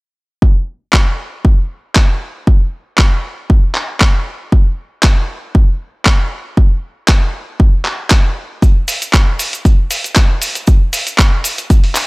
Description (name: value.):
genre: nu-disco.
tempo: 117 BPM.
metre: 4/4.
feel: swing 54% on 16ths.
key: none.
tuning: none.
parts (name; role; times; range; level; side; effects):
electronic kick drum; drums; 0.4-11.8 s; none; -10 LUFS; equal; none.
dusty soul sampler-style drum kit; drums; 0.9-12.1 s; handclaps, hi-hat; -16 LUFS; equal; none.
cabasa; percussion; 8.6-12.1 s; none; -24 LUFS; equal; none.
room: little or no reverb.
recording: dry, gritty hardware recording.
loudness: -11 LUFS.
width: side -27 dB against mid.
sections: 0.4-12.1 A section.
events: none.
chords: none.